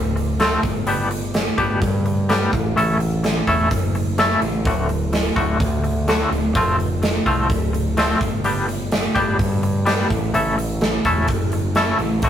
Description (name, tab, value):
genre	quiet-loud alternative rock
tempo	127 BPM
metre	4/4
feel	straight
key	unclear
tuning	A4 = 442 Hz
part	growling picked electric bass	bass	0.0-12.3 s	D1 to G2	-22 LUFS	equal	overdrive
part	twangy electric guitar	arpeggios	0.2-12.3 s	A2 to A4	-21 LUFS	left 1 dB	tremolo
part	big rock drum kit	drums	0.2-12.3 s	hi-hat, kick drum, snare drum	-21 LUFS	right 1 dB	none
room	light reverb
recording	rough rehearsal-room recording, warm saturation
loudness	-17 LUFS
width	side -10 dB against mid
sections	0.0-12.3 A section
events	none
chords	0.0 F; 0.6 G; 2.5 A; 4.7 D; 6.6 F; 8.2 G; 10.1 A